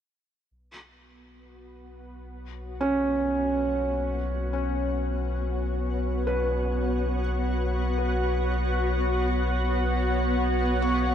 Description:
ambient; 52 BPM; 4/4; straight; A4 = 439 Hz
shimmering ambient pad; sustained chords; 1.6-11.1 s; B3 to F#5; -29 LUFS; equal; chorus, built-in reverb
warm sub bass; bass; 0.5-11.1 s; B1; -28 LUFS; equal
felt-muted upright piano; arpeggios; 2.8-11.1 s; C#4 to C#6; -30 LUFS; right 1 dB; ping-pong delay
moderate huge ambient reverb, RT60 8.4 s; -24 LUFS; side -9 dB against mid
0.5-11.1 A section
fade-in on ambient pad 0.5-11.1
0.5 Bsus2

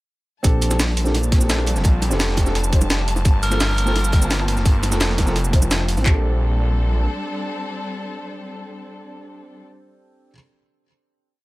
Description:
liquid drum and bass; 171 BPM; 4/4; straight; Bb major; A4 = 438 Hz
felt-muted upright piano; accompaniment; 0.4-10.3 s; Bb3 to A5; -28 LUFS; right 1 dB; digital delay
dark studio string section; sustained chords; 0.4-9.6 s; F3 to A5; -30 LUFS; left 2 dB
swelling detuned saw bass; bass; 0.4-7.1 s; F1 to Bb1; -20 LUFS; equal
crunchy breakbeat drum kit; drums; 0.4-6.1 s; hi-hat, snare drum; -32 LUFS; equal
drum and bass drum kit; drums; 0.4-6.1 s; handclaps, kick drum; -16 LUFS; equal
jungle sampler-style drum kit; drums; 0.4-6.0 s; hi-hat, shaker, snare drum; -24 LUFS; equal
bongos; percussion; 1.1-6.0 s; -32 LUFS; right 2 dB
raspy tenor saxophone; melody; 3.4-4.8 s; Bb4; -27 LUFS; equal; dub echo
little or no reverb; -17 LUFS; side -19 dB against mid
0.4-6.1 drop; 6.1-8.9 final chord
drop 0.4-6.1
0.4 Bbmaj13; 3.3 Gm11; 6.1 Bbmaj13

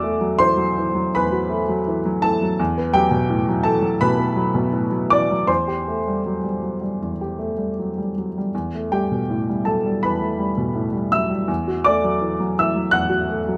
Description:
neoclassical minimalist piano; 81 BPM; 4/4; uneven beats, rubato; A4 = 441 Hz
warm upright piano; solo; 0.0-13.6 s; E2 to F#6; -21 LUFS; equal
light reverb; -21 LUFS; mono
0.0-13.6 A section
0.0 D/E; 2.6 Emadd9; 5.5 C6/E; 8.5 Gadd9/E; 11.5 D/E

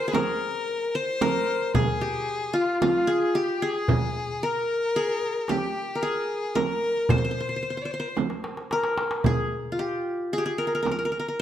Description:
Arabic maqam ensemble; 112 BPM (eighths); 10/8; straight; C maqam bayati; A4 = 440 Hz
qanun; melody; 0.0-11.4 s; F4 to C5; -26 LUFS; left 1 dB
clear violin; second line; 0.0-8.2 s; F4 to D5-43c; -30 LUFS; left 3 dB
darbuka; percussion; 0.1-11.1 s; -28 LUFS; left 1 dB
frame drum; percussion; 0.1-11.1 s; -29 LUFS; right 6 dB
moderate recital hall reverb, RT60 1.4 s; close, detailed microphones; -24 LUFS; side -10 dB against mid
0.0-9.2 A section; 9.2-11.4 B section
drum fill 8.2-9.2

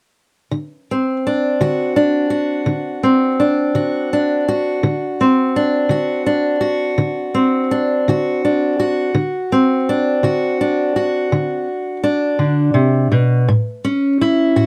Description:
acoustic country blues, solo or duo; 56 BPM (dotted quarters); 12/8; straight; D mixolydian; A4 = 440 Hz
fingerpicked steel-string acoustic guitar; solo; 0.5-14.7 s; A2 to F#4; -17 LUFS; equal
light reverb; dry, close 1970s-style studio recording; -17 LUFS; mono
0.5-14.7 A section
0.5 D7; 13.5 A

